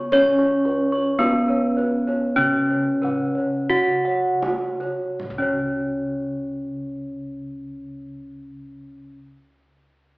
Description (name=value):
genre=Javanese gamelan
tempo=37-59 BPM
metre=4/4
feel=straight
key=unclear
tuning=A4 = 439 Hz
part: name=gamelan-type bronze metallophone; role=melody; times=0.0-9.2 s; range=B3-25c to C#5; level=-23 LUFS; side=equal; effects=none
part: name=gamelan-type bronze metallophone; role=accompaniment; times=0.0-9.2 s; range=C#3 to C#4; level=-28 LUFS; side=equal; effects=none
part: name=gamelan-type bossed gongs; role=arpeggios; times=0.0-9.2 s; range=B4-25c to C#6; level=-30 LUFS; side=equal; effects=none
part: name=gamelan-type bronze metallophone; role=arpeggios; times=0.0-9.2 s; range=B4-25c to C#6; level=-30 LUFS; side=right 1 dB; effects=none
part: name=gamelan-type bossed gongs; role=bass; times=0.0-9.1 s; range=C#2 to C#5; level=-27 LUFS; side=equal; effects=none
part: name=kendang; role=percussion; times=0.1-6.0 s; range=none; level=-34 LUFS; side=equal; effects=none
room=wet large studio reverb, RT60 1.4 s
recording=band playing live in one room, AM radio sound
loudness=-19 LUFS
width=side -24 dB against mid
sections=0.0-5.2 A section; 5.2-10.2 B section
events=slowing down 0.0-5.2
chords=none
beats=| 0.12 1.19 2.38 3.70 | 5.20 6.80 8.41